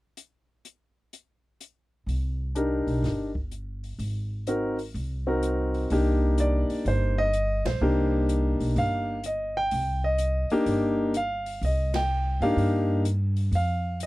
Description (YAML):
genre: jazz piano trio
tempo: 126 BPM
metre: 4/4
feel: swing 66% on 8ths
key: C minor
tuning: A4 = 440 Hz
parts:
  - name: open jazz drum kit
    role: drums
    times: 0.2-14.1 s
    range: hi-hat, kick drum, ride cymbal, snare drum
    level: -40 LUFS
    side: left 1 dB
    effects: none
  - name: upright bass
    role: bass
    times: 2.1-14.1 s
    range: G1 to G2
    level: -27 LUFS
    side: equal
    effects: none
  - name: clear concert grand piano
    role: melody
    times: 2.6-14.1 s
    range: Bb3 to G5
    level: -25 LUFS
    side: equal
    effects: none
room: little or no reverb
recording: dry, close 1970s-style studio recording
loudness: -24 LUFS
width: side -18 dB against mid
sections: 0.2-2.1 A section; 2.1-5.9 B section; 5.9-14.1 C section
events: band accent 7.6, 11.9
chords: 0.2 N.C.; 2.1 Cm7; 4.0 Ab7; 5.9 Cm7; 13.5 N.C.